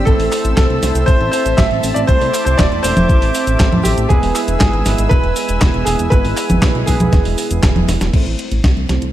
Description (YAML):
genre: italo disco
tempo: 119 BPM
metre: 4/4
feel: straight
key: A minor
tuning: A4 = 440 Hz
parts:
  - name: clear baby grand piano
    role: melody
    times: 0.0-7.8 s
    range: G4 to E5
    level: -19 LUFS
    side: equal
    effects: digital delay
  - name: warm analog pad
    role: sustained chords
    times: 0.0-8.1 s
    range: C4 to E6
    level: -24 LUFS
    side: right 1 dB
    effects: chorus
  - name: analog synth brass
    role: stabs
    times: 0.0-9.1 s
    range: G#3 to C5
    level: -22 LUFS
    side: right 4 dB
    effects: chorus
  - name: chorused synth bass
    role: bass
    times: 0.0-9.1 s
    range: E1 to C2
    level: -18 LUFS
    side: equal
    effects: tube saturation
  - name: clean 12-bit digital drum machine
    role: drums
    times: 0.1-9.1 s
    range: cabasa, congas, crash cymbal, handclaps, hi-hat, snare drum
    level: -19 LUFS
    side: equal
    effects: none
  - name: electronic kick drum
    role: drums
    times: 0.1-8.7 s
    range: none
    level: -14 LUFS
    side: equal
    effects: none
room: light reverb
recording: dark, warm production, lossy compression artefacts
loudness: -12 LUFS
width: side -13 dB against mid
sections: 0.0-8.1 A section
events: drum fill 7.9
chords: 0.1 Am; 4.1 E; 8.1 Am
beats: | 0.07 0.57 1.08 1.58 | 2.09 2.59 3.10 3.60 | 4.10 4.61 5.11 5.62 | 6.12 6.62 7.13 7.63 | 8.14 8.64